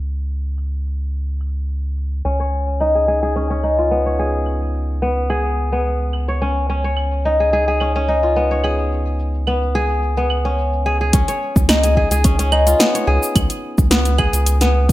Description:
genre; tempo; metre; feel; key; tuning
organic downtempo; 108 BPM; 4/4; swing 53% on 16ths; Db mixolydian; A4 = 440 Hz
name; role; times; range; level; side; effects
round analog bass; bass; 0.0-14.9 s; Ab1 to Db2; -19 LUFS; equal; tube saturation, sidechain pumping
deep house drum kit; drums; 0.0-14.9 s; claves, hi-hat, shaker, snare drum; -20 LUFS; equal; overdrive, low-pass filter on perc, low-pass filter on hats, low-pass filter on snare, low-pass filter on room
kora; arpeggios; 2.2-14.9 s; Cb4 to Db5; -18 LUFS; left 1 dB; digital delay
electronic kick drum; drums; 11.1-14.9 s; none; -16 LUFS; equal; overdrive
room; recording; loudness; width
moderate recital hall reverb, RT60 1.5 s, digital ambience; low-pass filter; -16 LUFS; side -16 dB against mid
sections
0.0-11.1 A section; 11.1-14.9 B section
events
filter sweep 0.0-11.1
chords
0.0 Db7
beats
| 0.02 0.58 1.13 1.69 | 2.25 2.80 3.36 3.91 | 4.47 5.02 5.58 6.13 | 6.69 7.25 7.80 8.36 | 8.91 9.47 10.02 10.58 | 11.13 11.69 12.24 12.80 | 13.36 13.91 14.47

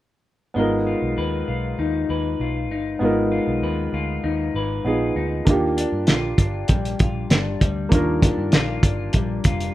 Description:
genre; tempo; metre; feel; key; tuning
indie pop, bedroom pop; 98 BPM; 4/4; straight; unclear; A4 = 440 Hz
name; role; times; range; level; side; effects
clear upright piano; accompaniment; 0.5-9.7 s; Bb3 to Bb4; -25 LUFS; right 1 dB; none
electric guitar through a small old amp; accompaniment; 0.6-9.7 s; Eb3 to Cb5; -26 LUFS; left 4 dB; lush chorus, vibrato effect
vintage muted picked electric bass; bass; 0.6-9.7 s; F1 to G2; -27 LUFS; equal; none
cloth-damped thuddy drum kit; drums; 5.5-9.7 s; hi-hat, kick drum, snare drum; -18 LUFS; equal; none
room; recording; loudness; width
light reverb; rough home demo mix; -19 LUFS; side -15 dB against mid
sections
0.6-9.7 A section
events
none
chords
0.6 Abm6; 5.5 Ebmaj9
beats
| 0.56 1.18 1.79 2.40 | 3.02 3.63 4.24 4.86 | 5.47 6.08 6.69 7.31 | 7.92 8.53 9.14

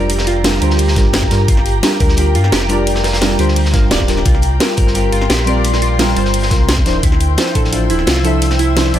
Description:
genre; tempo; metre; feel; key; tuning
liquid drum and bass; 173 BPM; 4/4; straight; G dorian; A4 = 441 Hz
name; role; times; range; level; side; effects
deep mellow chord stab; accompaniment; 0.0-9.0 s; F3 to E5; -19 LUFS; equal; chorus, tape echo
ethereal airy pad; sustained chords; 0.0-9.0 s; G4 to E6; -21 LUFS; equal; ensemble chorus, built-in reverb, sidechain pumping
harp-like synth pluck; arpeggios; 0.0-9.0 s; E4 to F5; -22 LUFS; right 2 dB; chorus, ping-pong delay
sub bass with octave; bass; 0.0-9.0 s; D1 to G2; -16 LUFS; equal; none
crunchy breakbeat drum kit; drums; 0.1-9.0 s; hi-hat, snare drum; -23 LUFS; left 1 dB; high-pass filter on hats, high-pass filter on snare, high-pass filter on room
drum and bass drum kit; drums; 0.1-9.0 s; hi-hat, snare drum; -20 LUFS; equal; none
electronic kick drum; drums; 1.0-7.6 s; none; -15 LUFS; equal; none
room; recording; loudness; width
small room ambience; none; -11 LUFS; side -11 dB against mid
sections
0.0-9.0 A section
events
none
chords
0.0 Gm7; 4.3 C7sus4; 6.9 Dm9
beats
| 0.10 0.44 0.79 1.14 | 1.48 1.83 2.18 2.52 | 2.87 3.22 3.56 3.91 | 4.26 4.61 4.95 5.30 | 5.65 5.99 6.34 6.69 | 7.03 7.38 7.73 8.07 | 8.42 8.77

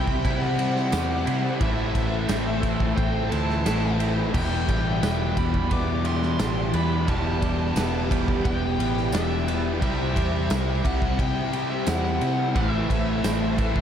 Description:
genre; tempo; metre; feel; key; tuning
rock, shoegaze and dream pop; 88 BPM; 4/4; straight; E minor; A4 = 440 Hz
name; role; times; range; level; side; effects
biting lead guitar; melody; 0.0-13.8 s; E5 to D6; -31 LUFS; left 2 dB; overdrive, analog delay
phased string machine; sustained chords; 0.0-13.8 s; G4 to C6; -34 LUFS; right 1 dB; ensemble chorus, phaser
twelve-string electric guitar; arpeggios; 0.0-13.8 s; E3 to G4; -36 LUFS; right 6 dB; lush chorus, analog delay
overdriven electric guitar; riff; 0.0-13.8 s; E2 to E4; -32 LUFS; right 7 dB; reverse reverb
overdriven electric guitar; riff; 0.0-13.8 s; E2 to C4; -30 LUFS; equal; none
thick fuzz guitar; riff; 0.0-13.8 s; E2 to C4; -30 LUFS; left 8 dB; distortion, analog chorus
vintage muted fingered electric bass; bass; 0.0-13.8 s; E1 to C3; -28 LUFS; equal; none
big rock drum kit; drums; 0.1-13.8 s; crash cymbal, kick drum, ride cymbal, snare drum; -28 LUFS; equal; none
tambourine; percussion; 0.9-13.4 s; none; -40 LUFS; right 7 dB; none
room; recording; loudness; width
moderate lush hall reverb, RT60 2.8 s; dreamy mix soaked in reverb; -21 LUFS; side -9 dB against mid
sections
0.0-13.8 A section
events
none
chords
0.0 Cmaj7; 1.6 Am; 4.3 Em7; 9.8 C; 12.6 Am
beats
0.24 0.92 | 1.60 2.29 2.97 3.65 | 4.34 5.02 5.71 6.39 | 7.08 7.76 8.45 9.13 | 9.82 10.50 11.19 11.87 | 12.55 13.24

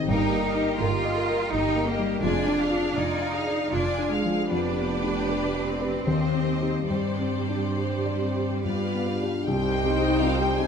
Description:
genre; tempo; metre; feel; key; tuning
classical, romantic movement for piano and orchestra; 65-84 BPM; 3/4; rubato; C minor; A4 = 442 Hz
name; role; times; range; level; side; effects
clear symphonic violin section; melody; 0.0-10.7 s; D5 to Ab5; -37 LUFS; left 3 dB; none
warm concert grand piano; melody; 0.0-10.7 s; C2 to F5; -27 LUFS; left 3 dB; none
rich symphonic violin section; second line; 0.0-10.7 s; G4 to G5; -33 LUFS; left 2 dB; none
dark symphonic viola section; accompaniment; 0.0-10.7 s; G3 to Bb4; -33 LUFS; right 3 dB; none
dark French horn section; sustained chords; 0.1-10.7 s; Ab3 to Ab4; -31 LUFS; left 2 dB; none
rich symphonic cello section; bass; 0.1-10.7 s; C2 to F4; -30 LUFS; right 4 dB; none
rich symphonic double bass section; bass; 0.1-10.7 s; F1 to G2; -31 LUFS; right 5 dB; none
room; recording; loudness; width
moderate scoring stage reverb, RT60 2.0 s; none; -23 LUFS; side -6 dB against mid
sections
0.0-9.5 A section; 9.5-10.7 B section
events
none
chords
0.1 Eb/G; 2.2 Ddim/F; 4.5 G7/F; 6.1 Cm/Eb; 6.9 Gsus4; 8.6 G; 9.5 Cm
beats
| 0.08 0.80 1.52 | 2.23 2.97 3.72 | 4.51 5.27 6.06 | 6.88 7.74 8.63 | 9.46 10.21

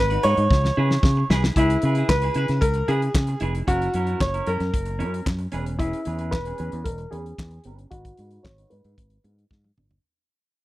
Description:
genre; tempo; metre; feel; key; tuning
disco; 113 BPM; 4/4; straight; C# dorian; A4 = 435 Hz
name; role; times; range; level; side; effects
bright grand piano; melody; 0.0-9.7 s; E4 to C#5; -25 LUFS; equal; low-pass filter
fingered electric bass; bass; 0.0-10.0 s; E1 to C#3; -24 LUFS; equal; none
clean electric guitar; accompaniment; 0.1-10.0 s; C#4 to B4; -31 LUFS; right 4 dB; spring reverb, low-pass filter
damped 70s drum kit; drums; 0.1-10.0 s; handclaps, hi-hat, kick drum, snare drum, toms; -22 LUFS; equal; none
room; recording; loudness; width
little or no reverb; dry, close 1970s-style studio recording; -20 LUFS; side -17 dB against mid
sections
0.0-1.6 A section; 1.6-10.0 B section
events
drum fill 0.5-1.6, 9.5-10.0; fade-out 1.6-10.0; filter sweep 1.6-10.0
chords
0.0 G#m7; 0.5 C#m7; 3.7 F#7; 5.5 E6; 7.9 G#m7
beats
0.50 1.03 | 1.56 2.09 2.62 3.15 | 3.67 4.20 4.73 5.26 | 5.79 6.32 6.85 7.38 | 7.92 8.45 8.98 9.51

